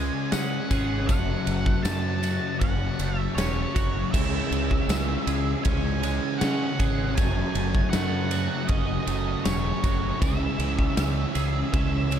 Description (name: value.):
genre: rock, shoegaze and dream pop.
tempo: 79 BPM.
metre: 4/4.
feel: straight.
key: C# minor.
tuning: A4 = 440 Hz.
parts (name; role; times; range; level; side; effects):
octave-fuzz lead guitar; melody; 0.0-12.2 s; C#5 to A5; -33 LUFS; right 2 dB; distortion, tape echo.
twangy electric guitar; arpeggios; 0.0-12.2 s; E3 to G#4; -37 LUFS; right 10 dB; ensemble chorus, tape echo.
raw garage guitar; riff; 0.0-12.2 s; F#2 to C#4; -32 LUFS; right 1 dB; overdrive.
thick fuzz guitar; riff; 0.0-12.2 s; F#2 to C#4; -32 LUFS; left 10 dB; distortion, wide subtle chorus.
growling fingered electric bass; bass; 0.0-12.2 s; E1 to C#3; -28 LUFS; equal; overdrive.
big rock drum kit; drums; 0.3-12.2 s; crash cymbal, kick drum, ride cymbal, snare drum; -28 LUFS; equal; none.
tambourine; percussion; 0.3-12.2 s; none; -43 LUFS; left 19 dB; none.
overdriven semi-hollow guitar; riff; 4.1-12.2 s; F#2 to C#4; -32 LUFS; right 11 dB; reverse reverb.
room: little or no reverb.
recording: none.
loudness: -23 LUFS.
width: side -9 dB against mid.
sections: 0.0-12.2 A section.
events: none.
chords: 0.0 C#m; 1.1 F#m; 4.1 C#m; 7.2 F#m; 10.2 C#m.